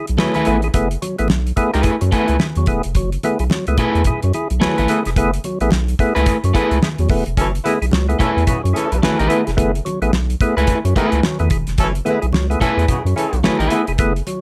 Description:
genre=funk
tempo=109 BPM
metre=4/4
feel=swing 60% on 16ths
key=F# minor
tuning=A4 = 440 Hz
part: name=percussive tonewheel organ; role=stabs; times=0.0-14.4 s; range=F#3 to G#4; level=-24 LUFS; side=equal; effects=slow rotary speaker
part: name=round analog bass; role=bass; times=0.1-14.2 s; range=E1 to F#2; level=-21 LUFS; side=equal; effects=none
part: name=damped 70s drum kit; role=drums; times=0.1-14.4 s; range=hi-hat, kick drum, snare drum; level=-22 LUFS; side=equal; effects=none
part: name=electric guitar at the edge of break-up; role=accompaniment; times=0.2-13.8 s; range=A3 to B4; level=-22 LUFS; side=equal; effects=spring reverb
part: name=congas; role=percussion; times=0.2-14.4 s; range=none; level=-31 LUFS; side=equal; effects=none
part: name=dark horn section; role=second line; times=7.4-13.4 s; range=C#3 to B4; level=-24 LUFS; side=equal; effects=none
room=moderate studio ambience, RT60 0.5 s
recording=none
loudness=-17 LUFS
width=mono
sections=0.0-14.4 A section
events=none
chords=0.0 F#m11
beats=0.19 | 0.74 1.29 1.85 2.40 | 2.95 3.50 4.06 4.61 | 5.16 5.71 6.26 6.82 | 7.37 7.92 8.47 9.02 | 9.58 10.13 10.68 11.23 | 11.78 12.33 12.88 13.44 | 13.99

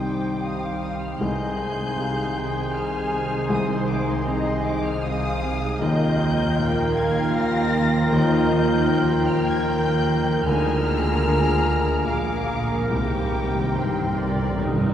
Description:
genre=cinematic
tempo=77 BPM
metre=3/4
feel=rubato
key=unclear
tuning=A4 = 439 Hz
part: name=warm symphonic violin section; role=melody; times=0.0-14.9 s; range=Bb5 to Bb6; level=-33 LUFS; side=left 3 dB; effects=none
part: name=clear oboe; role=second line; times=0.0-14.9 s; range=Bb4 to C5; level=-33 LUFS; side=right 1 dB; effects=none
part: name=dark clarinet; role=second line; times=0.0-14.9 s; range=Eb4 to F4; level=-32 LUFS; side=left 3 dB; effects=none
part: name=mellow hollow silver concert flute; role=second line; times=0.0-14.9 s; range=G5 to Ab5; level=-33 LUFS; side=left 1 dB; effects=none
part: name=warm symphonic violin section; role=second line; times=0.0-14.9 s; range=C5 to Bb5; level=-31 LUFS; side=left 1 dB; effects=none
part: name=felt-muted upright piano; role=accompaniment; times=0.0-14.9 s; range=C2 to C4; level=-28 LUFS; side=equal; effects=none
part: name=rich symphonic viola section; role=accompaniment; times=0.0-14.9 s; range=G3 to D5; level=-30 LUFS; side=right 3 dB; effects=none
part: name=mellow French horn section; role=sustained chords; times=0.0-14.9 s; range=Eb3 to Bb4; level=-29 LUFS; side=left 2 dB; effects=none
part: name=concert harp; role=arpeggios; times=0.0-14.9 s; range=C3 to Ab5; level=-31 LUFS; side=left 3 dB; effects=none
part: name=clear symphonic double bass section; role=bass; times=0.0-14.9 s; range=Bb1 to Eb2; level=-29 LUFS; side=right 2 dB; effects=none
part: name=rich symphonic cello section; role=bass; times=0.0-14.9 s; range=Bb2 to Eb3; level=-30 LUFS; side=right 2 dB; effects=none
part: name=timpani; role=percussion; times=1.2-2.3, 12.9-14.9 s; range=C3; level=-30 LUFS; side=right 1 dB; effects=none
room=wet cathedral reverb, RT60 4.8 s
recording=recorded in a church or concert hall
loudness=-20 LUFS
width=side -10 dB against mid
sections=0.0-14.9 A section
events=timpani fill 12.9-14.9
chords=0.0 Cm; 1.2 Ab/C; 5.8 Ebadd9; 10.5 Bb7/D; 12.9 Cm7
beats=0.43 | 1.20 1.97 2.74 | 3.50 4.27 5.04 | 5.80 6.57 7.34 | 8.12 8.89 9.67 | 10.47 11.26 12.07 | 12.90 13.76 14.60

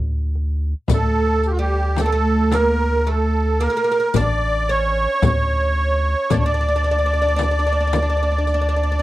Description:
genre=Arabic maqam ensemble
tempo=111 BPM (eighths)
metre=10/8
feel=straight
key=D maqam suznak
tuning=A4 = 440 Hz
part: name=round analog bass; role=bass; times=0.0-9.0 s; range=A1 to D2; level=-20 LUFS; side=equal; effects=none
part: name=darbuka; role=percussion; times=0.4-8.6 s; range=none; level=-25 LUFS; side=left 2 dB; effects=none
part: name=musette accordion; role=melody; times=0.9-9.0 s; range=F#4-50c to D5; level=-20 LUFS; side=right 1 dB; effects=slapback echo
part: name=oud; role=second line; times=0.9-9.0 s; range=G3 to D4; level=-24 LUFS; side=right 2 dB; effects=none
part: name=frame drum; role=percussion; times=0.9-8.2 s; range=none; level=-24 LUFS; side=left 2 dB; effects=none
part: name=riq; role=percussion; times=0.9-8.6 s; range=none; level=-30 LUFS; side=left 15 dB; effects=none
room=little or no reverb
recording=dry, close 1970s-style studio recording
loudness=-16 LUFS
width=side -15 dB against mid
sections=0.0-9.0 A section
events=none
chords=none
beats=0.35 | 0.89 1.44 1.98 2.52 3.06 3.60 4.14 4.68 5.22 5.77 | 6.31 6.85 7.39 7.93 8.47 9.01

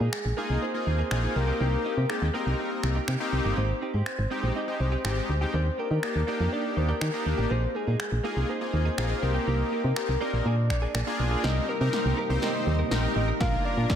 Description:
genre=dance-pop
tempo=122 BPM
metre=4/4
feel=straight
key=C minor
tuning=A4 = 440 Hz
part: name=soft octave-layered synth lead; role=melody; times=0.0-14.0 s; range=G4 to F5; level=-32 LUFS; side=left 2 dB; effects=chorus, tape echo
part: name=direct-recorded clean electric guitar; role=riff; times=0.0-13.9 s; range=Bb3 to Bb4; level=-37 LUFS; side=right 4 dB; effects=analog chorus
part: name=solid FM bass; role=bass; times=0.0-13.9 s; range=G1 to Eb3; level=-26 LUFS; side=equal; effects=sidechain pumping
part: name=punchy analog drum machine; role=drums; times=0.1-14.0 s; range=finger snaps, kick drum, snare drum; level=-34 LUFS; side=equal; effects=overdrive
part: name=big bright polysynth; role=accompaniment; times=0.4-14.0 s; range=Ab3 to C5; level=-31 LUFS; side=equal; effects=chorus, sidechain pumping
part: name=chorused pulse-width pad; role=sustained chords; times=11.4-14.0 s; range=C3 to Eb4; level=-34 LUFS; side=right 1 dB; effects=sidechain pumping
room=moderate lush hall reverb, RT60 2.1 s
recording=dreamy mix soaked in reverb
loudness=-24 LUFS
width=side -9 dB against mid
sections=0.0-11.4 A section; 11.4-14.0 B section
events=build-up 11.4-14.0; drum fill 11.4-14.0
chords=0.0 Bb7sus4; 1.4 Cm7; 3.6 Abmaj7; 5.5 Ebmaj7; 7.5 Bb7sus4; 9.2 Cm7; 10.5 Bb7; 11.4 Cm7; 13.4 Bb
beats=0.13 0.62 1.11 | 1.60 2.10 2.59 3.08 | 3.57 4.06 4.55 5.05 | 5.54 6.03 6.52 7.01 | 7.51 8.00 8.49 8.98 | 9.47 9.96 10.46 10.95 | 11.44 11.93 12.42 12.91 | 13.41 13.90

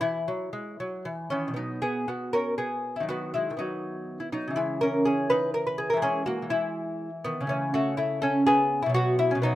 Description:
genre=classical, baroque-style dance for lute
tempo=114-125 BPM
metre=3/4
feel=rubato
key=B major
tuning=A4 = 441 Hz
part: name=lute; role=solo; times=0.0-9.6 s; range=B2 to B4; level=-25 LUFS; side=equal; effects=none
room=light reverb, studio reverb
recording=rough home demo mix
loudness=-25 LUFS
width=side -14 dB against mid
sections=0.0-1.6 A section; 1.6-9.6 A section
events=none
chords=0.0 E; 1.6 B5; 3.1 B/D#; 4.6 C#m; 6.0 C#m/E; 7.5 A/C#; 9.0 B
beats=| 0.02 0.55 1.07 | 1.58 2.10 2.60 | 3.10 3.60 4.09 | 4.58 5.07 5.56 | 6.04 6.53 7.01 | 7.50 7.98 8.47 | 8.96 9.44

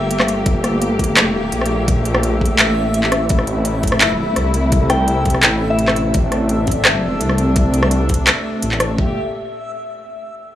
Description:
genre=half-time drum and bass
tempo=169 BPM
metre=4/4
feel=half-time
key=G dorian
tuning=A4 = 440 Hz
part: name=muted studio string section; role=sustained chords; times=0.0-9.1 s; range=Bb2 to G4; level=-21 LUFS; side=equal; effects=sidechain pumping
part: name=dark detuned saw bass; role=bass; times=0.0-9.1 s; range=G1 to C2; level=-19 LUFS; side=equal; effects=none
part: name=backwards swelling texture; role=texture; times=0.0-9.0 s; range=E5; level=-26 LUFS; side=equal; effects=built-in reverb
part: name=organic electronic drum kit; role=drums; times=0.1-8.9 s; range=handclaps, hi-hat, rim click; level=-16 LUFS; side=equal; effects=overdrive
part: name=electronic kick drum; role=drums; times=0.5-9.1 s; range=none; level=-18 LUFS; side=equal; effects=overdrive
part: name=soft synth bell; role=melody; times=4.9-6.2 s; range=E5 to G5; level=-24 LUFS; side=left 2 dB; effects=chorus, tremolo, vintage 12-bit sampler grit, tape echo
room=light reverb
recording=dry, gritty hardware recording, small room reverb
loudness=-14 LUFS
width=side -12 dB against mid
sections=0.0-9.0 A section; 9.0-10.4 B section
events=drop 0.0-9.0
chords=0.0 Gmadd9; 3.3 Am; 9.0 Gmadd9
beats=0.11 | 0.46 0.82 1.17 1.53 | 1.88 2.24 2.59 2.95 | 3.30 3.66 4.01 4.37 | 4.72 5.08 5.43 5.79 | 6.14 6.50 6.85 7.21 | 7.56 7.92 8.27 8.63 | 8.98

